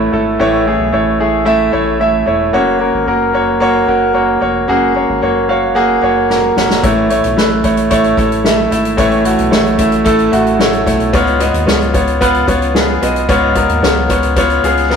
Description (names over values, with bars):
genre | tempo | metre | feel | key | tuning
piano-driven pop | 112 BPM | 4/4 | straight | unclear | A4 = 440 Hz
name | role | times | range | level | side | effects
bright concert grand piano | accompaniment | 0.0-15.0 s | G#2 to A#5 | -11 LUFS | equal | none
round analog bass | bass | 0.0-15.0 s | E1 to D#2 | -21 LUFS | equal | none
soft-mallet drum kit | drums | 6.3-15.0 s | hi-hat, kick drum, snare drum | -17 LUFS | left 1 dB | none
room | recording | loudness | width
wet stone room reverb, RT60 1.1 s | rough rehearsal-room recording, warm saturation | -10 LUFS | side -6 dB against mid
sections
0.0-15.0 A section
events
grand piano fill 5.2-6.8; drum fill 6.3-6.8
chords
0.0 A; 2.5 F#; 6.8 A; 11.1 C#7